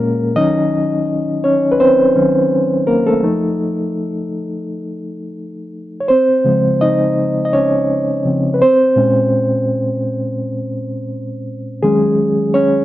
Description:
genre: soul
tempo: 84 BPM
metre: 4/4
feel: swing 54% on 16ths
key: unclear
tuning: A4 = 439 Hz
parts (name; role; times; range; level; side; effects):
- reed electric piano; solo; 0.0-12.8 s; Bb2 to Eb5; -14 LUFS; equal; fast tremolo
room: light reverb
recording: rough home demo mix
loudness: -13 LUFS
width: side -14 dB against mid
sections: 0.0-12.8 A section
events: reed electric piano solo 0.0-12.8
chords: 0.4 Ebm7; 3.2 F7; 6.1 Dbmaj7; 8.6 Bbm7; 11.8 Ebm7

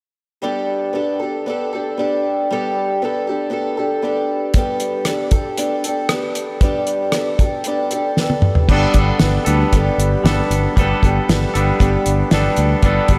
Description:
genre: folk rock and heartland rock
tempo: 116 BPM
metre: 4/4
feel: straight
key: G major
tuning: A4 = 441 Hz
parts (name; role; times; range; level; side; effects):
- picked twelve-string acoustic guitar; accompaniment; 0.4-13.2 s; G3 to A4; -22 LUFS; equal; none
- damped 70s drum kit; drums; 4.5-13.2 s; crash cymbal, hi-hat, kick drum, rim click, snare drum, toms; -20 LUFS; equal; none
- twangy electric guitar; riff; 8.7-13.2 s; G3 to A4; -22 LUFS; equal; none
- fingered electric bass; bass; 8.7-13.2 s; G1 to D2; -20 LUFS; equal; none
room: moderate lush hall reverb, RT60 3.0 s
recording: big arena sound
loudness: -18 LUFS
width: mono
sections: 0.4-8.7 A section; 8.7-13.2 B section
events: drum fill 8.2-8.7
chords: 0.4 Gadd9

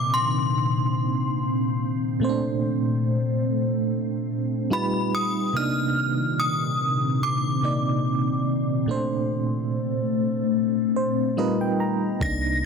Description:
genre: contemporary R&B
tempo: 72 BPM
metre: 4/4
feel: swing 54% on 16ths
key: C dorian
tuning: A4 = 441 Hz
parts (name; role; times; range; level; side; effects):
- synth chime; melody; 0.0-12.6 s; B5 to Bb6; -26 LUFS; equal; ensemble chorus, digital delay
- FM electric piano with tremolo; accompaniment; 0.0-12.7 s; Bb2 to A#5; -26 LUFS; right 2 dB; none
- glassy FM pad; sustained chords; 0.0-12.7 s; Bb2 to C4; -25 LUFS; left 2 dB; ensemble chorus, built-in reverb, phaser
- soft 808-style bass; bass; 12.2-12.7 s; C2; -27 LUFS; left 1 dB; none
- electronic kick drum; drums; 12.2-12.4 s; none; -28 LUFS; equal; none
room: moderate concert hall reverb, RT60 2.4 s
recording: dense, heavily limited modern master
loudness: -22 LUFS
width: side -5 dB against mid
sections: 0.0-12.7 A section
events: FM electric piano fill 10.5-12.2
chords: 0.0 Cm9; 2.2 Bbmaj9; 4.7 Gaug7; 5.5 Cm9; 8.9 Bbmaj9; 11.4 G7alt

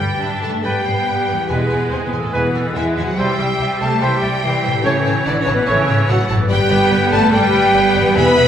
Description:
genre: cinematic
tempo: 144 BPM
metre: 4/4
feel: straight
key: G major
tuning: A4 = 440 Hz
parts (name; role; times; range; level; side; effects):
- rich symphonic violin section; melody; 0.0-8.5 s; A4 to B5; -23 LUFS; left 3 dB; none
- bright clarinet; second line; 0.0-8.5 s; G#4 to E5; -27 LUFS; equal; none
- mellow concert flute; second line; 0.0-8.5 s; A4 to B5; -25 LUFS; left 3 dB; none
- warm cor anglais; second line; 0.0-8.5 s; C#5 to A5; -28 LUFS; right 3 dB; none
- warm symphonic violin section; second line; 0.0-8.4 s; C#5 to B5; -29 LUFS; left 3 dB; none
- bright symphonic viola section; accompaniment; 0.0-8.5 s; E3 to D4; -23 LUFS; right 1 dB; none
- mellow French horn section; sustained chords; 0.0-8.5 s; A3 to B4; -20 LUFS; left 1 dB; none
- concert harp; arpeggios; 0.0-8.5 s; E2 to E5; -26 LUFS; left 4 dB; none
- rich symphonic cello section; bass; 0.0-8.5 s; A2 to B3; -23 LUFS; right 2 dB; none
- warm symphonic double bass section; bass; 0.0-8.5 s; E1 to G2; -22 LUFS; right 2 dB; none
- warm trombone section; sustained chords; 0.6-8.5 s; D3 to A3; -28 LUFS; right 3 dB; none
- mellow trumpet; stabs; 0.6-8.5 s; B4 to C#5; -24 LUFS; right 1 dB; none
room: wet recital hall reverb, RT60 1.5 s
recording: recorded in a church or concert hall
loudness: -14 LUFS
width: side -9 dB against mid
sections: 0.0-8.5 A section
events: none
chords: 0.0 G; 1.5 E; 3.2 C; 4.8 A; 6.5 G

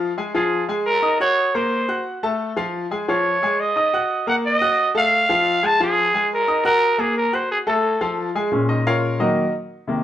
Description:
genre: latin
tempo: 176 BPM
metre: 4/4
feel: straight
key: unclear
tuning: A4 = 440 Hz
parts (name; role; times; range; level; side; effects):
- clear baby grand piano; accompaniment; 0.0-10.0 s; Bb2 to Gb6; -21 LUFS; left 1 dB; none
- growling trumpet; melody; 0.4-8.3 s; Ab4 to A5; -18 LUFS; right 1 dB; none
room: moderate large studio reverb, RT60 1.0 s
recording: band playing live in one room, nothing above 10.4 kHz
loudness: -17 LUFS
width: side -11 dB against mid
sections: 0.0-8.5 A section; 8.5-10.0 B section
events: grand piano solo 8.5-10.0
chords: 0.3 Fmadd11; 1.0 Ebm; 1.7 Am6; 2.4 F; 3.1 Dbadd9/F; 3.8 Ebm; 4.4 Ebmadd9; 5.1 F; 5.8 Fm; 6.5 Ebm; 7.2 Am6; 7.8 F; 8.5 Bbm7; 9.2 Ebm

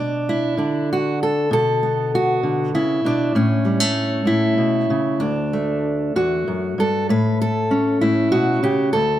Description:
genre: folk, solo fingerstyle acoustic guitar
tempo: 65 BPM (dotted quarters)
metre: 6/8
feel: rubato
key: unclear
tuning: A4 = 440 Hz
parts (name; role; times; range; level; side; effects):
- fingerpicked steel-string acoustic guitar; solo; 0.0-9.2 s; D2 to B4; -17 LUFS; equal; none
room: light reverb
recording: none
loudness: -17 LUFS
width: side -12 dB against mid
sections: 0.0-7.1 A section; 7.1-9.2 B section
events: none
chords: 0.0 Bm; 1.5 Bm11; 3.3 A; 5.2 D; 7.1 Aadd9

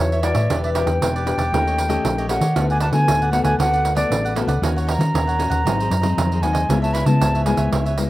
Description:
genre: samba and choro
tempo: 116 BPM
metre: 4/4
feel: straight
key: unclear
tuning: A4 = 440 Hz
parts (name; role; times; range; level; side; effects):
- reedy silver concert flute; melody; 0.0-7.7 s; C#5 to B5; -22 LUFS; equal; none
- cavaquinho; accompaniment; 0.0-8.0 s; D4 to F#5; -29 LUFS; right 3 dB; slapback echo
- nylon-string guitar; accompaniment; 0.0-8.1 s; G#2 to C#5; -24 LUFS; left 4 dB; none
- hollow-body short-scale fingered electric bass; bass; 0.0-8.1 s; E1 to D#3; -21 LUFS; equal; none
- pandeiro; percussion; 0.1-8.1 s; none; -25 LUFS; right 5 dB; none
room: little or no reverb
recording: recorded outdoors, with no room sound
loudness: -17 LUFS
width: side -16 dB against mid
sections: 0.0-8.1 A section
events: none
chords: 0.0 A6; 0.5 Em7; 1.5 D#7#11; 2.6 D6; 4.6 D#m7; 5.7 G#7; 6.7 C#m7

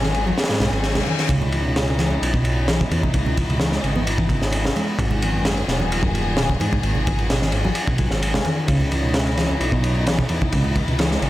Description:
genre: breakbeat, breaks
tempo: 130 BPM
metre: 4/4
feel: straight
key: C# minor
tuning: A4 = 440 Hz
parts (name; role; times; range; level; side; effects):
- clear symphonic string section; sustained chords; 0.0-11.3 s; F#3 to G#4; -28 LUFS; left 2 dB; sidechain pumping
- reed electric piano; riff; 0.0-11.3 s; F#2 to C#4; -25 LUFS; equal; low-pass filter
- dark detuned saw bass; bass; 0.0-11.3 s; D#1 to G#2; -23 LUFS; equal; tube saturation
- crunchy breakbeat drum kit; drums; 0.0-11.3 s; kick drum, ride cymbal, snare drum; -22 LUFS; equal; none
- congas; percussion; 0.3-10.9 s; none; -29 LUFS; right 2 dB; none
- reverse cymbal; sound effects; 0.6-1.3 s; none; -30 LUFS; left 7 dB; none
room: little or no reverb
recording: none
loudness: -18 LUFS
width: side -15 dB against mid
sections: 0.0-11.3 A section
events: reverse cymbal 0.6-1.3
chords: 0.0 G#m7; 1.3 C#madd9; 5.0 G#m7; 8.7 C#madd9

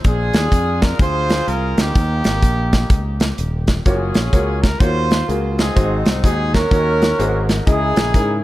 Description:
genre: uptempo gospel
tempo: 126 BPM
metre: 4/4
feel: swing 63% on 8ths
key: unclear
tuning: A4 = 440 Hz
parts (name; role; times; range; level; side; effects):
- bright horn section; melody; 0.0-8.4 s; Bb3 to C5; -21 LUFS; right 1 dB; tape echo
- modern bright fingered electric bass; bass; 0.0-8.4 s; Eb1 to Ab2; -20 LUFS; equal; none
- modern studio drum kit; drums; 0.0-8.3 s; hi-hat, kick drum, snare drum; -16 LUFS; equal; none
- warm upright piano; accompaniment; 3.9-8.4 s; Ab2 to Eb5; -22 LUFS; left 1 dB; none
room: light reverb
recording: none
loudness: -14 LUFS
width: side -16 dB against mid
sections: 0.0-8.4 A section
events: none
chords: 0.0 Bb7; 2.0 Eb; 3.9 Gbmaj7; 5.8 Ab7; 6.7 Ebm7; 7.2 Ab9; 7.7 Dbmadd9

